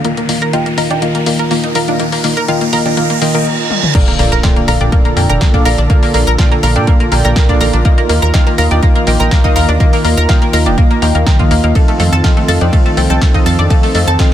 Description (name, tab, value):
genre	progressive house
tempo	123 BPM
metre	4/4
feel	straight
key	Bb major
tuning	A4 = 440 Hz
part	warm analog pad	sustained chords	0.0-14.3 s	D3 to Bb4	-20 LUFS	right 1 dB	chorus, vintage 12-bit sampler grit, sidechain pumping
part	analog pluck	arpeggios	0.0-14.2 s	F3 to Bb5	-17 LUFS	equal	analog chorus, sidechain pumping, dub echo
part	deep mellow chord stab	stabs	0.0-14.3 s	Bb2 to G5	-16 LUFS	equal	chorus, cassette tape, sidechain pumping, dub echo
part	house drum kit	drums	0.0-14.3 s	crash cymbal, hi-hat, ride cymbal, snare drum, toms	-21 LUFS	left 2 dB	sidechain pumping on hats, sidechain pumping on toms, sidechain pumping on cymbals
part	riser, reverse cymbal and impact	sound effects	0.0-5.9 s	none	-22 LUFS	right 2 dB	none
part	electronic kick drum	drums	3.9-14.3 s	none	-11 LUFS	equal	none
part	tight sequencer bass	bass	4.2-14.2 s	Eb1 to Bb2	-13 LUFS	equal	sidechain pumping
room	light reverb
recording	dense, heavily limited modern master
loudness	-9 LUFS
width	side -11 dB against mid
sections	0.0-3.9 A section; 3.9-14.3 B section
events	build-up 0.0-3.9; riser 0.0-3.5; filter sweep on synth stab 0.0-3.9; filter sweep on analog synth pad 0.0-3.9; reverse cymbal 3.0-3.9; drum fill 3.7; drop 3.9-14.3; impact 3.9-5.9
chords	0.0 Ebsus2; 3.9 Bbmaj7; 7.8 Ebsus2; 11.8 F7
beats	| 0.04 0.53 1.02 1.51 | 2.00 2.48 2.97 3.46 | 3.95 4.44 4.92 5.41 | 5.90 6.39 6.88 7.36 | 7.85 8.34 8.83 9.31 | 9.80 10.29 10.78 11.27 | 11.75 12.24 12.73 13.22 | 13.70 14.19